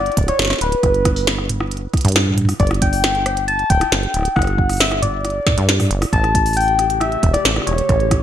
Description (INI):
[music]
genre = IDM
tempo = 136 BPM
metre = 4/4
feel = straight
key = G lydian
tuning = A4 = 436 Hz
[part]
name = soft struck synth lead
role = melody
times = 0.0-8.2 s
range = B4 to A5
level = -19 LUFS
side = left 2 dB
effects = chorus, ping-pong delay
[part]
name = deep acid bass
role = bass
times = 0.0-8.2 s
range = D1 to G2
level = -20 LUFS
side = right 1 dB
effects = tube saturation
[part]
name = glitchy drum kit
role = drums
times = 0.1-8.2 s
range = hi-hat, rim click, snare drum, toms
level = -20 LUFS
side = right 1 dB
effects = small room ambience, gated reverb
[part]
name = electronic kick drum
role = drums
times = 0.2-8.2 s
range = none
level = -18 LUFS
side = equal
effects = small room ambience
[part]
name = warbly tape-like pad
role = sustained chords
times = 6.5-8.2 s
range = C#3 to G4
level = -28 LUFS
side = left 2 dB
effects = chorus, built-in reverb, phaser
[sound]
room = moderate plate reverb, RT60 1.3 s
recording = bright 1980s-style digital production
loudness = -14 LUFS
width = side -10 dB against mid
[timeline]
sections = 0.0-8.2 A section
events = none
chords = 0.0 G; 6.1 A7